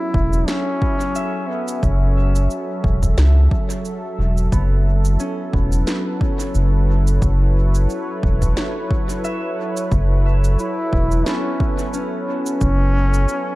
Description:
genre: ambient dub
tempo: 89 BPM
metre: 4/4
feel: swing 56% on 16ths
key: unclear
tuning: A4 = 441 Hz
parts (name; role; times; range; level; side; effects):
- warm trombone; melody; 0.0-2.8, 10.6-13.6 s; B3 to E4; -24 LUFS; left 1 dB; dub echo
- warm analog pad; sustained chords; 0.0-13.6 s; F#3 to E5; -26 LUFS; right 1 dB; chorus, vintage 12-bit sampler grit
- concert harp; arpeggios; 0.0-13.6 s; B3 to E5; -30 LUFS; left 1 dB; tape echo
- round analog bass; bass; 0.1-13.3 s; E1 to C#2; -16 LUFS; equal; none
- electronic kick drum; drums; 0.1-12.8 s; none; -21 LUFS; equal; overdrive
- electronic shaker and snare drum; drums; 0.3-13.4 s; none; -30 LUFS; right 1 dB; dub echo
room: little or no reverb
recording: dark, warm production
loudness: -16 LUFS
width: side -18 dB against mid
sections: 0.0-13.6 A section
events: none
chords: 0.0 F#m7; 4.5 Aadd9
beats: 0.48 1.15 | 1.83 2.50 3.18 3.85 | 4.52 5.20 5.87 6.55 | 7.22 7.89 8.57 9.24 | 9.92 10.59 11.27 11.94 | 12.61 13.29

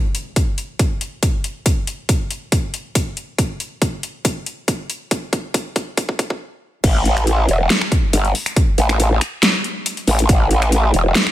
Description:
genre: heavy wobble dubstep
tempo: 139 BPM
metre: 4/4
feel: half-time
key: unclear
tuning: A4 = 439 Hz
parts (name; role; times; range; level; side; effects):
- dubstep drum kit; drums; 0.1-11.3 s; crash cymbal, finger snaps, hi-hat, snare drum; -20 LUFS; left 1 dB; studio reverb
- electronic kick drum; drums; 0.4-10.4 s; none; -18 LUFS; equal; studio reverb
- growl bass; bass; 6.8-11.1 s; E1 to A1; -14 LUFS; equal; chorus, overdrive
room: little or no reverb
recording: high-pass filter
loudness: -16 LUFS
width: side -13 dB against mid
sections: 0.0-6.8 A section; 6.8-11.3 B section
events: build-up 0.0-6.8; filter sweep 0.0-6.8; drum fill 3.4-6.4; stop 6.4-6.8; drop 6.8-11.3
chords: none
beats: 0.36 0.80 1.23 | 1.66 2.09 2.52 2.95 | 3.38 3.82 4.25 4.68 | 5.11 5.54 5.97 6.41 | 6.84 7.27 7.70 8.13 | 8.56 9.00 9.43 9.86 | 10.29 10.72 11.15

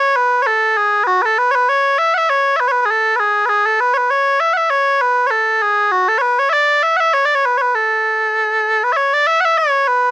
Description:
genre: celtic folk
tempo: 198 BPM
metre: 4/4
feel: swing 56% on 8ths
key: A major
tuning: A4 = 439 Hz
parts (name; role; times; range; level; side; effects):
- mellow small bagpipes; solo; 0.0-10.1 s; F#4 to F#5; -12 LUFS; equal; none
room: little or no reverb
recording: close, detailed microphones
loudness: -12 LUFS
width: side -18 dB against mid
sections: 0.0-9.0 A section; 9.0-10.1 A section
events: none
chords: none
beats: 0.18 | 0.49 0.79 1.09 1.40 | 1.70 2.00 2.31 2.61 | 2.91 3.22 3.52 3.82 | 4.13 4.43 4.73 5.04 | 5.34 5.64 5.95 6.25 | 6.55 6.86 7.16 7.46 | 7.76 8.06 8.37 8.67 | 8.97 9.27 9.57 9.87

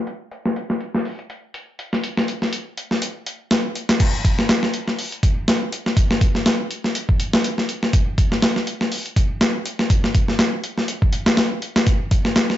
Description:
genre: breakbeat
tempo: 122 BPM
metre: 4/4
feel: swing 56% on 16ths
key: none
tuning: none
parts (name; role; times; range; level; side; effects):
- breakbeat sampler-style drum kit; drums; 0.1-12.6 s; crash cymbal, hi-hat, kick drum, snare drum; -18 LUFS; equal; overdrive
room: little or no reverb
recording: low-pass filter, nothing above 7.8 kHz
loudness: -18 LUFS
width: side -13 dB against mid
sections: 0.0-4.0 A section; 4.0-12.6 B section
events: filter sweep 0.0-4.0; drop 4.0-12.6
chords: none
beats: | 0.07 0.56 1.05 1.54 | 2.04 2.53 3.02 3.51 | 4.00 4.49 4.99 5.48 | 5.97 6.46 6.95 7.45 | 7.94 8.43 8.92 9.41 | 9.90 10.40 10.89 11.38 | 11.87 12.36

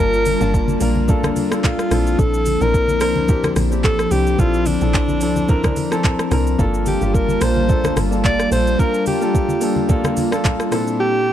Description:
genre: amapiano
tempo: 109 BPM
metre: 4/4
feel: swing 55% on 16ths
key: G dorian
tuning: A4 = 437 Hz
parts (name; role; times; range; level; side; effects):
- breathy alto saxophone; melody; 0.0-11.3 s; D4 to D5; -21 LUFS; right 1 dB; analog delay
- dark grand piano; accompaniment; 0.0-11.3 s; Bb2 to A5; -23 LUFS; left 1 dB; none
- airy breathy pad; sustained chords; 0.0-11.3 s; F3 to A5; -23 LUFS; left 2 dB; chorus, sidechain pumping
- deep log drum bass; bass; 0.0-8.8 s; G1 to C2; -21 LUFS; equal; tube saturation
- smooth R&B drum kit; drums; 0.1-11.0 s; handclaps, hi-hat, kick drum, rim click, shaker; -20 LUFS; equal; overdrive
- congas; percussion; 0.3-10.6 s; none; -26 LUFS; left 1 dB; none
room: small room ambience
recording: dry, gritty hardware recording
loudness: -15 LUFS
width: side -10 dB against mid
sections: 0.0-11.3 A section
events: none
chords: 0.0 Gm9; 1.9 Bbmaj9#11; 6.6 Gm9; 10.7 Bbmaj9#11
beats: 0.54 1.09 1.64 | 2.19 2.74 3.29 3.84 | 4.39 4.94 5.49 6.04 | 6.59 7.14 7.69 8.24 | 8.79 9.34 9.89 10.45 | 10.99

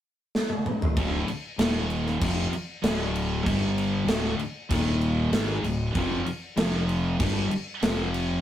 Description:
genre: hard rock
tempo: 96 BPM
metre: 4/4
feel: straight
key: D minor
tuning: A4 = 440 Hz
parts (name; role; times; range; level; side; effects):
- gated 80s drum kit; drums; 0.3-8.3 s; crash cymbal, kick drum, snare drum, toms; -28 LUFS; equal; none
- crunchy overdriven guitar; riff; 1.0-8.4 s; D2 to G#3; -28 LUFS; left 2 dB; none
- scooped high-gain guitar; riff; 1.0-8.4 s; D2 to G#3; -33 LUFS; right 5 dB; distortion
- fuzz fingered electric bass; bass; 1.0-8.4 s; D1 to G#1; -30 LUFS; right 1 dB; overdrive
room: moderate small room reverb, RT60 0.5 s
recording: rough rehearsal-room recording, tube saturation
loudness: -24 LUFS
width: side -11 dB against mid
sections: 1.0-8.4 A section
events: drum fill 0.3-1.0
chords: 0.0 N.C.; 1.0 D5; 1.6 Eb5; 2.2 Dm; 3.5 G5; 4.1 D5; 4.7 Eb5; 5.3 D5; 6.0 F5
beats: 0.35 | 0.97 1.60 2.22 2.84 | 3.47 4.09 4.71 5.33 | 5.96 6.58 7.20 7.82

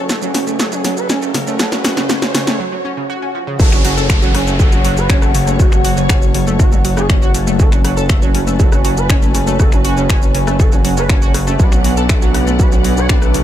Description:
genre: melodic techno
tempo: 120 BPM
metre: 4/4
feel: straight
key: F# minor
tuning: A4 = 440 Hz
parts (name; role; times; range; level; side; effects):
- expressive portamento lead; melody; 0.0-13.3 s; F#3 to C#5; -22 LUFS; equal; ensemble chorus, sidechain pumping, dub echo
- dark studio string section; sustained chords; 0.0-13.4 s; F#3 to F#5; -27 LUFS; left 2 dB; sidechain pumping
- analog pluck; arpeggios; 0.0-13.4 s; C#3 to A5; -21 LUFS; right 2 dB; chorus, sidechain pumping, digital delay
- gritty driven synth bass; bass; 0.0-13.4 s; F#1 to B1; -19 LUFS; equal; sidechain pumping, high-pass filter
- riser, swell and downlifter; sound effects; 0.0-7.6 s; none; -24 LUFS; right 1 dB; none
- warbly tape-like pad; texture; 0.0-13.4 s; C#4 to G#5; -25 LUFS; equal; chorus, built-in reverb, sidechain pumping
- punchy analog drum machine; drums; 0.1-13.4 s; finger snaps, hi-hat, rim click, shaker, snare drum; -20 LUFS; left 1 dB; overdrive, sidechain pumping on perc, sidechain pumping on hats
- electronic kick drum; drums; 3.6-13.2 s; none; -12 LUFS; equal; distortion
room: digital ambience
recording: none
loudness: -11 LUFS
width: side -11 dB against mid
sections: 0.0-3.6 A section; 3.6-13.4 B section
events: build-up 0.0-3.6; drum fill 0.0-2.6; riser 0.0-2.6; break 2.6-3.6; swell 2.6-3.6; drop 3.6-13.4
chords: 0.0 F#m; 11.6 Bm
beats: 0.10 0.60 1.10 | 1.60 2.10 2.60 3.10 | 3.60 4.10 4.60 5.10 | 5.60 6.10 6.60 7.10 | 7.60 8.10 8.60 9.10 | 9.60 10.10 10.60 11.10 | 11.60 12.10 12.60 13.10

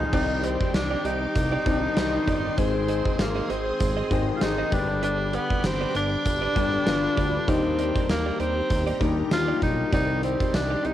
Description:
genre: 1980s-style pop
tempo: 98 BPM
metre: 4/4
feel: swing 55% on 16ths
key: C minor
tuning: A4 = 440 Hz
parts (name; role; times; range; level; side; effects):
- clear tenor saxophone; melody; 0.0-10.9 s; Bb3 to F4; -27 LUFS; right 1 dB; cassette tape
- clear baby grand piano; accompaniment; 0.0-10.9 s; D3 to Eb5; -29 LUFS; left 7 dB; cassette tape
- string machine, full ensemble; sustained chords; 0.0-10.9 s; G4 to Eb6; -36 LUFS; right 1 dB; ensemble chorus, cassette tape
- direct-recorded clean electric guitar; riff; 0.0-10.9 s; Bb3 to Eb5; -34 LUFS; right 9 dB; wide subtle chorus, cassette tape
- fat analog bass; bass; 0.0-10.9 s; G1 to Eb2; -29 LUFS; right 1 dB; none
- gated 80s drum kit; drums; 0.1-10.9 s; crash cymbal, hi-hat, kick drum, snare drum, tambourine; -28 LUFS; right 1 dB; none
room: light reverb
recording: home recording on cassette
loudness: -22 LUFS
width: side -12 dB against mid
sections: 0.1-10.9 A section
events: none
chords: 0.1 Cmadd9; 2.6 Ab; 4.7 G; 7.5 Ebmaj7; 9.9 Cmadd9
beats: | 0.13 0.74 1.35 1.97 | 2.58 3.19 3.80 4.42 | 5.03 5.64 6.25 6.87 | 7.48 8.09 8.70 9.31 | 9.93 10.54

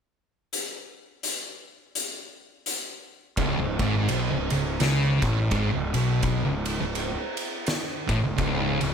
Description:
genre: stoner and doom metal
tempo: 84 BPM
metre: 4/4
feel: swing 59% on 8ths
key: unclear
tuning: A4 = 440 Hz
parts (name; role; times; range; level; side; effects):
- oversized low-tuned drum kit; drums; 0.5-8.9 s; hi-hat, kick drum, ride cymbal, snare drum; -29 LUFS; equal; none
- thick fuzz guitar; riff; 3.4-8.9 s; C#2 to C#3; -27 LUFS; left 7 dB; distortion
- thick fuzz guitar; riff; 3.4-8.9 s; C#2 to C#3; -27 LUFS; right 8 dB; distortion
- fuzz fingered electric bass; bass; 3.4-8.9 s; C#1 to C#2; -30 LUFS; equal; overdrive
room: light reverb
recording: none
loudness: -24 LUFS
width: side -7 dB against mid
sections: 0.5-3.4 A section; 3.4-8.9 B section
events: none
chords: 0.5 N.C.; 3.4 C#5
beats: | 0.53 1.24 1.95 2.67 | 3.38 4.10 4.81 5.53 | 6.24 6.96 7.68 8.39

